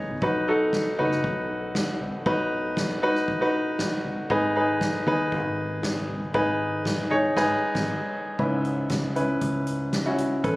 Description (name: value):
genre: piano-driven pop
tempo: 118 BPM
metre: 4/4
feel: straight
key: unclear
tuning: A4 = 440 Hz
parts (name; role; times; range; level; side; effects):
- clear baby grand piano; accompaniment; 0.0-10.6 s; G#2 to C#5; -24 LUFS; equal; none
- soft-mallet drum kit; drums; 0.1-10.6 s; crash cymbal, hi-hat, kick drum, ride cymbal, snare drum, toms; -31 LUFS; equal; none
- fingered electric bass; bass; 0.2-10.6 s; F#1 to D#2; -32 LUFS; equal; none
room: small room ambience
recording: recorded on a phone in the room, club reverb, compression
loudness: -23 LUFS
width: side -20 dB against mid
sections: 0.0-8.4 A section; 8.4-10.6 B section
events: drum fill 0.0; band accent 7.4-8.4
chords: 0.2 B; 4.3 G#m; 8.4 C#m7